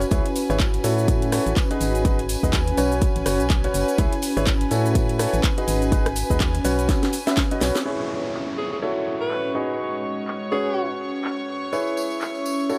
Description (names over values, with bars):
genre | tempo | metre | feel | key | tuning
piano house | 124 BPM | 4/4 | swing 58% on 16ths | C# minor | A4 = 443 Hz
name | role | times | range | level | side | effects
clear studio violin section | sustained chords | 0.0-12.8 s | B4 to C#6 | -35 LUFS | equal | sidechain pumping, low-pass filter
organ-like FM bass | bass | 0.0-7.7 s | F#1 to A2 | -28 LUFS | equal | sidechain pumping
house drum kit | drums | 0.0-12.8 s | cabasa, crash cymbal, handclaps, hi-hat, rim click, snare drum | -31 LUFS | equal | low-pass filter on hats, low-pass filter on cymbals, low-pass filter on perc, low-pass filter on snare
tambourine | percussion | 0.0-7.8, 11.7-12.8 s | none | -41 LUFS | equal | none
warbly tape-like pad | texture | 0.0-12.8 s | G#3 to B4 | -32 LUFS | equal | chorus, built-in reverb, sidechain pumping
clear baby grand piano | riff | 0.1-12.8 s | C#4 to E5 | -28 LUFS | equal | sidechain pumping, delay
electronic kick drum | drums | 0.1-7.5 s | none | -24 LUFS | equal | none
downlifter | sound effects | 7.9-11.7 s | none | -39 LUFS | equal | none
bright alto saxophone | melody | 8.6-10.9 s | G#4 to B4 | -32 LUFS | equal | delay
room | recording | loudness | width
light reverb | none | -22 LUFS | mono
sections
0.0-7.9 A section; 7.9-12.8 B section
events
drum fill 6.9-7.9; band accent 7.7; filter sweep on violin section 7.9-12.8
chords
0.1 C#m7; 1.1 A6; 1.8 G#m7; 2.8 Bsus2; 4.0 C#m7; 5.0 A6; 5.7 G#m7; 6.6 Bsus2; 7.9 C#m7; 8.8 A6; 9.6 G#m7; 10.5 Bsus2; 11.7 C#m7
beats
| 0.11 0.60 1.08 1.57 | 2.05 2.53 3.02 3.50 | 3.98 4.47 4.95 5.44 | 5.92 6.40 6.89 7.37 | 7.86 8.34 8.82 9.31 | 9.79 10.28 10.76 11.24 | 11.73 12.21 12.70